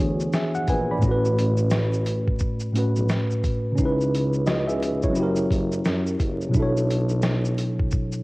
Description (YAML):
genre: lo-fi hip hop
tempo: 87 BPM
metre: 4/4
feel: swing 61% on 16ths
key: unclear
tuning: A4 = 438 Hz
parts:
  - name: tine electric piano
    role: accompaniment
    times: 0.0-8.2 s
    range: A2 to B5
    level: -22 LUFS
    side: equal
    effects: fast stereo tremolo, cassette tape
  - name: mellow tuba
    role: bass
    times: 0.0-7.9 s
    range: F#1 to F#2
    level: -28 LUFS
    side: equal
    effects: tube saturation
  - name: lo-fi sampler-style drum kit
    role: drums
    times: 0.0-8.2 s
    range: hi-hat, kick drum, shaker, snare drum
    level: -26 LUFS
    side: equal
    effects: none
room: light reverb, digital ambience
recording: home recording on cassette, vinyl crackle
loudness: -20 LUFS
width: side -22 dB against mid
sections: 0.0-8.2 A section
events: none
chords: 0.0 E13; 1.0 A69; 3.8 C#m7; 5.2 F#7b9; 6.5 Bm11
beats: 0.33 | 1.02 1.71 2.40 3.09 | 3.78 4.47 5.16 5.85 | 6.54 7.23 7.92